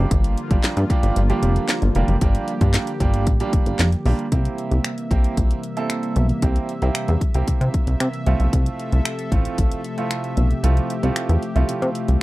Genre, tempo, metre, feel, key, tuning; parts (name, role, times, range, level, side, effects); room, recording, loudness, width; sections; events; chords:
dance-pop; 114 BPM; 4/4; straight; A4 = 440 Hz
clear baby grand piano; accompaniment; 0.0-12.2 s; G3 to A4; -27 LUFS; right 5 dB; sidechain pumping
warm analog pad; sustained chords; 0.0-12.2 s; C3 to E5; -28 LUFS; left 1 dB; chorus, sidechain pumping
plucky analog bass; bass; 0.0-12.2 s; F1 to C3; -19 LUFS; equal; sidechain pumping
house drum kit; drums; 0.1-12.2 s; finger snaps, handclaps, hi-hat, kick drum, snare drum; -21 LUFS; equal
little or no reverb; dry, close 1970s-style studio recording; -18 LUFS; side -18 dB against mid
0.0-4.3 A section; 4.3-12.2 B section
kick muted 10.6-12.2
0.0 Gm7; 4.3 C7; 8.3 Fmaj7